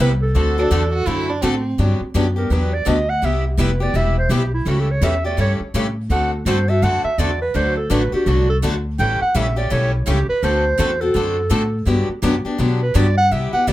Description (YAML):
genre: acoustic string swing (jazz manouche)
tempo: 167 BPM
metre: 4/4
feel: swing 61% on 8ths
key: G major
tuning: A4 = 440 Hz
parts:
  - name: breathy clarinet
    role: melody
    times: 0.0-13.7 s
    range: E4 to G5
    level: -21 LUFS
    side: right 2 dB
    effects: plate reverb
  - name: picked steel-string acoustic guitar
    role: accompaniment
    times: 0.0-13.7 s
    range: C3 to A4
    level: -23 LUFS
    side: left 3 dB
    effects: none
  - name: picked steel-string acoustic guitar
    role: accompaniment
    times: 0.0-13.7 s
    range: C3 to A4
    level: -27 LUFS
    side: right 3 dB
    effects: none
  - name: upright bass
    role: bass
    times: 0.0-13.7 s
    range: E1 to B2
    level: -19 LUFS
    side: equal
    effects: none
  - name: warm violin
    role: second line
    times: 0.6-1.8 s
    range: C4 to F#4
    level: -24 LUFS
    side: right 3 dB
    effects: none
room: moderate club reverb, RT60 0.5 s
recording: none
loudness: -16 LUFS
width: side -15 dB against mid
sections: 0.0-1.8 A section; 1.8-13.3 B section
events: clarinet solo 1.8-13.7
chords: 0.3 D7; 1.8 Gmaj7; 3.2 Cmaj7; 4.7 A7; 6.1 D7; 7.5 D; 9.0 A7; 10.4 D7; 11.9 Gmaj7